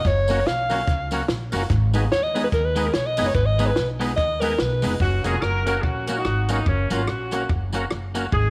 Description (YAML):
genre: ska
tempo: 145 BPM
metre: 4/4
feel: swing 59% on 8ths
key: F# major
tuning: A4 = 440 Hz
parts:
  - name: clear alto saxophone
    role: melody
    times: 0.0-5.0 s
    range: A#4 to E#5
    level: -26 LUFS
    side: equal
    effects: none
  - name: upright bass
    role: bass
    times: 0.0-8.5 s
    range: E#1 to D#2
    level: -27 LUFS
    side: equal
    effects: none
  - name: compact cocktail drum kit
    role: drums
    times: 0.0-8.4 s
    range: hi-hat, kick drum, rim click, snare drum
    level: -29 LUFS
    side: equal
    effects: tape echo
  - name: clean electric guitar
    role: accompaniment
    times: 0.3-8.3 s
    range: F#3 to G#4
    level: -32 LUFS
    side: equal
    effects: tape echo
  - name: overdriven tonewheel organ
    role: stabs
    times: 0.3-8.3 s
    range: A#3 to B4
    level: -33 LUFS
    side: equal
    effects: chorus vibrato, slow rotary speaker
  - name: tambourine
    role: percussion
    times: 0.3-8.2 s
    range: none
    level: -45 LUFS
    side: equal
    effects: none
  - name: warm horn section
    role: melody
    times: 5.0-8.5 s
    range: A#3 to A#4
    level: -28 LUFS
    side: equal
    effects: none
room: light reverb, small room ambience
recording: none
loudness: -22 LUFS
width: mono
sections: 0.0-5.0 A section; 5.0-8.5 B section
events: alto saxophone solo 0.0-5.0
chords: 0.0 F#; 1.7 G#m; 5.0 F#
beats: | 0.05 0.46 0.88 1.29 | 1.70 2.12 2.53 2.94 | 3.35 3.77 4.18 4.59 | 5.01 5.42 5.84 6.25 | 6.67 7.08 7.50 7.91 | 8.32